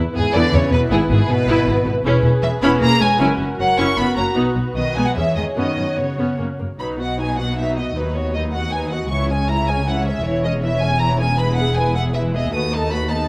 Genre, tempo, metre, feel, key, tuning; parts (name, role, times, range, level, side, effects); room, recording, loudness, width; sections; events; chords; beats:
quick classical-period movement for string orchestra; 157 BPM; 3/4; rubato; B major; A4 = 440 Hz
dark studio violin section; second line; 0.0-13.3 s; D#4 to E5; -28 LUFS; equal
warm studio viola section; accompaniment; 0.0-13.3 s; E3 to G#4; -26 LUFS; equal
rich studio double bass section; bass; 0.0-13.3 s; E1 to F#2; -24 LUFS; equal
rich studio violin section; melody; 0.2-13.3 s; G#4 to D#6; -25 LUFS; equal
rich studio cello section; bass; 0.2-13.3 s; C#2 to C#4; -26 LUFS; equal
moderate scoring stage reverb, RT60 1.6 s; close, detailed microphones; -19 LUFS; mono
0.0-6.8 A section; 6.8-13.3 B section
0.0 E; 0.9 E/G#; 2.0 C#m7/E; 3.2 F#7; 4.4 B; 5.1 C#m/E; 5.6 F#sus4; 6.4 F#; 6.8 B; 8.0 B/D#; 9.1 C#m; 10.2 C#m/E; 11.4 E; 12.5 B7/D#
0.15 0.53 | 0.91 1.29 1.67 | 2.05 2.43 2.81 | 3.19 3.59 3.98 | 4.36 4.75 5.15 | 5.55 5.96 6.37 | 6.78 7.18 7.57 | 7.96 8.35 8.73 | 9.12 9.49 9.87 | 10.25 10.63 11.01 | 11.38 11.76 12.14 | 12.52 12.90 13.28